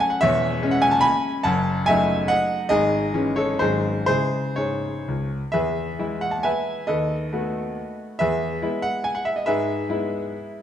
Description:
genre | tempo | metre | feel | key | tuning
classical, romantic triple-time dance for piano with dotted rhythms | 116-154 BPM | 3/4 | rubato | C# minor, E major from 5.6 s | A4 = 436 Hz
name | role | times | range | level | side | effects
clear grand piano | solo | 0.0-10.6 s | E1 to B5 | -20 LUFS | equal | none
room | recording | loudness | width
wet recital hall reverb, RT60 1.7 s | none | -20 LUFS | side -10 dB against mid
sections
0.0-5.6 A section; 5.6-10.6 B section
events
none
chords
0.2 C#m/E; 1.5 D#dim/F#; 2.7 C#m/G#; 3.6 G#7; 4.1 C#m; 5.6 E; 6.9 B7/D#; 8.2 E; 9.5 E/G#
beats
| 0.21 0.62 1.04 | 1.46 1.87 2.30 | 2.71 3.14 3.61 | 4.08 4.58 5.09 | 5.55 6.00 6.46 | 6.89 7.32 7.77 | 8.20 8.63 9.06 | 9.47 9.88 10.32

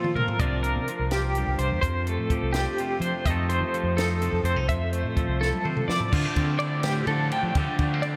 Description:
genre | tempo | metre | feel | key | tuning
math rock and midwest emo | 84 BPM (dotted quarters) | 6/8 | straight | F major | A4 = 440 Hz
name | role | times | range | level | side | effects
twangy electric guitar | accompaniment | 0.0-8.2 s | F2 to C5 | -33 LUFS | equal | none
twelve-string electric guitar | arpeggios | 0.0-8.2 s | F4 to G5 | -30 LUFS | equal | tremolo
compact cocktail drum kit | drums | 0.0-8.1 s | crash cymbal, hi-hat, kick drum, ride cymbal, snare drum, toms | -32 LUFS | equal | none
fingered electric bass | bass | 0.2-8.2 s | C2 to F3 | -30 LUFS | equal | none
raw garage guitar | riff | 6.1-8.2 s | D3 to D4 | -34 LUFS | equal | overdrive, lush chorus
room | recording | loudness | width
moderate huge ambient reverb, RT60 4.7 s | dreamy mix soaked in reverb | -25 LUFS | mono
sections
0.0-6.1 A section; 6.1-8.2 B section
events
drum fill 0.0-0.4, 5.4-6.1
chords
0.4 C9sus4; 1.8 F69; 3.3 F7; 4.7 Fmaj7; 6.1 Dm11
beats
| 0.40 1.11 | 1.83 2.55 | 3.26 3.98 | 4.70 5.41 | 6.13 6.84 | 7.56

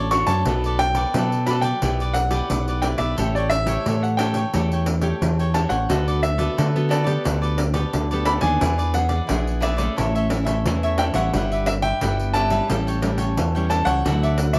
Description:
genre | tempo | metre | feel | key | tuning
samba and choro | 88 BPM | 4/4 | straight | unclear | A4 = 440 Hz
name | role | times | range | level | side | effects
cavaquinho | accompaniment | 0.0-14.6 s | D4 to G5 | -31 LUFS | equal | none
nylon-string guitar | accompaniment | 0.0-14.6 s | G2 to D5 | -30 LUFS | equal | none
modern bright fingered electric bass | bass | 0.0-14.6 s | G1 to D3 | -25 LUFS | equal | none
clear concert grand piano | melody | 0.1-14.6 s | D5 to C#6 | -27 LUFS | equal | none
pandeiro | percussion | 0.1-14.6 s | none | -30 LUFS | equal | none
room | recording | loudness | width
moderate studio reverb, RT60 0.6 s | none | -21 LUFS | mono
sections
0.0-14.6 A section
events
none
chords
0.5 Bm7; 1.8 Em7/B; 3.2 A7; 5.9 D6; 7.3 Gadd9/D; 8.6 E7; 10.0 A; 11.3 Em/G; 12.7 A7; 14.1 Dadd9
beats
| 0.47 1.15 1.82 2.50 | 3.18 3.86 4.54 5.22 | 5.90 6.58 7.26 7.94 | 8.62 9.30 9.98 10.66 | 11.34 12.02 12.70 13.38 | 14.06

